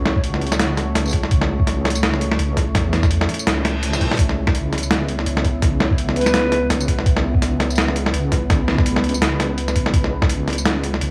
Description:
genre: half-time drum and bass.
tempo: 167 BPM.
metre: 4/4.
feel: swing 58% on 16ths, half-time.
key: C# minor.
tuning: A4 = 441 Hz.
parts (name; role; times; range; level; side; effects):
deep dark ambient pad; sustained chords; 0.0-11.1 s; A3 to C#5; -29 LUFS; equal; chorus, built-in reverb, sidechain pumping.
deep soft wobble bass; bass; 0.0-11.1 s; C#2 to E2; -24 LUFS; equal; chorus.
hollow concert flute; melody; 0.1-0.2, 5.8-6.7 s; B4 to C#5; -26 LUFS; equal; tape echo.
boom bap sampler-style drum kit; drums; 0.1-11.1 s; hi-hat, snare drum, tambourine; -23 LUFS; equal; none.
electronic kick drum; drums; 0.2-10.3 s; none; -22 LUFS; equal; none.
reverse cymbal; sound effects; 3.6-4.2 s; none; -30 LUFS; equal; none.
room: light reverb, digital ambience.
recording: small room ambience.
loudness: -19 LUFS.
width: mono.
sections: 0.0-11.1 A section.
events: reverse cymbal 3.6-4.2.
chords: 0.0 F#m/C#; 4.2 C#m7; 9.9 F#m/C#.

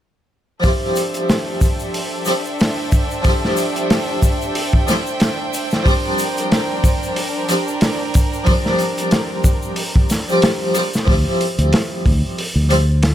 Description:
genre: trip hop.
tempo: 92 BPM.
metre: 4/4.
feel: swing 56% on 16ths.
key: D minor.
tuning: A4 = 441 Hz.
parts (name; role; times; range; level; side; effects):
harpsichord; accompaniment; 0.6-12.8 s; F3 to G4; -21 LUFS; equal; tremolo, tape echo.
clear studio violin section; sustained chords; 0.6-11.0 s; D4 to G5; -24 LUFS; right 1 dB; low-pass filter.
crunchy breakbeat drum kit; drums; 0.6-13.1 s; hi-hat, kick drum, snare drum; -18 LUFS; equal; none.
tube shaker; percussion; 0.6-11.0 s; none; -31 LUFS; left 6 dB; none.
fingered electric bass; bass; 11.1-13.1 s; D2; -15 LUFS; equal; tube saturation.
room: small room ambience.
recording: none.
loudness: -15 LUFS.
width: side -11 dB against mid.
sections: 0.6-11.1 A section; 11.1-13.1 B section.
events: none.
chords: 0.6 Dm11; 5.9 Bb6; 11.1 Dm11.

